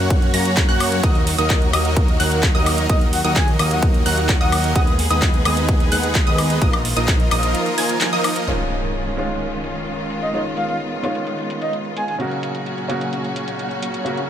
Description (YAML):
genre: EDM, festival progressive house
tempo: 129 BPM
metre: 4/4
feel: straight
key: unclear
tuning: A4 = 443 Hz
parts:
  - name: rich studio string section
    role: sustained chords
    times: 0.0-14.3 s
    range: Bb2 to Ab4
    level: -27 LUFS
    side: left 1 dB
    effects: sidechain pumping
  - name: wide unison pluck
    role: arpeggios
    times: 0.0-8.4 s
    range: Eb6 to Bb6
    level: -26 LUFS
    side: equal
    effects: vintage 12-bit sampler grit, sidechain pumping, dub echo
  - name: supersaw chords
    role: riff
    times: 0.0-8.4 s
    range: F3 to Bb5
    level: -24 LUFS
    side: right 1 dB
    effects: sidechain pumping, low-pass filter, dub echo
  - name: fat analog bass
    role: bass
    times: 0.0-7.5 s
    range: Bb1 to Gb2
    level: -22 LUFS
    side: equal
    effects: sidechain pumping
  - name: electronic kick drum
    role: drums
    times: 0.1-7.2 s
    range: none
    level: -17 LUFS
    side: equal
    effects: none
  - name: pop drum kit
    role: drums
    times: 0.1-14.3 s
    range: handclaps, hi-hat, woodblock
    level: -24 LUFS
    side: left 1 dB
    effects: overdrive, low-pass filter on hats, low-pass filter on perc, low-pass filter on snare, low-pass filter on room
  - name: breathy flute-like synth lead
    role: melody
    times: 2.8-4.8, 10.2-12.2 s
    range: Eb5 to Ab5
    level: -28 LUFS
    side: equal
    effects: chorus, dub echo
  - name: felt-muted upright piano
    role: accompaniment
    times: 8.5-14.3 s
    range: Db3 to Gb4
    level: -25 LUFS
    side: equal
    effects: sidechain pumping, dub echo
  - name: impact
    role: sound effects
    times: 8.5-10.3 s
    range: none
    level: -28 LUFS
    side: equal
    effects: none
room: light reverb, digital ambience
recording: none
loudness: -16 LUFS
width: side -10 dB against mid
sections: 0.0-8.5 A section; 8.5-14.3 B section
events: drop 0.0-8.5; band accent 8.0; impact 8.5-10.3; filter sweep on drum 8.5-14.3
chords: 0.0 Gb; 1.0 Ebm; 4.8 Abm/Eb; 6.6 Bbsus4; 8.5 Dbadd9; 12.2 Gb